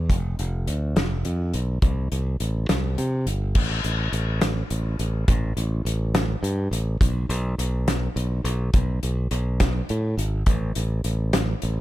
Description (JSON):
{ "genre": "indie rock", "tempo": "69 BPM (dotted quarters)", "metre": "6/8", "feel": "straight", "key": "unclear", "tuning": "A4 = 440 Hz", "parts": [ { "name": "modern bright fingered electric bass", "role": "bass", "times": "0.0-11.8 s", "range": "F1 to C3", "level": "-24 LUFS", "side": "equal", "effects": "none" }, { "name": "loose indie drum kit", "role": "drums", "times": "0.1-11.8 s", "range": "crash cymbal, hi-hat, kick drum, snare drum", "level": "-24 LUFS", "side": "equal", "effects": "none" } ], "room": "little or no reverb", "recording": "none", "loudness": "-22 LUFS", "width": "side -15 dB against mid", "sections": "0.0-3.6 A section; 3.6-11.8 B section", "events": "none", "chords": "none", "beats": "| 0.10 0.96 | 1.83 2.69 | 3.56 4.42 | 5.28 6.15 | 7.01 7.88 | 8.74 9.61 | 10.47 11.34" }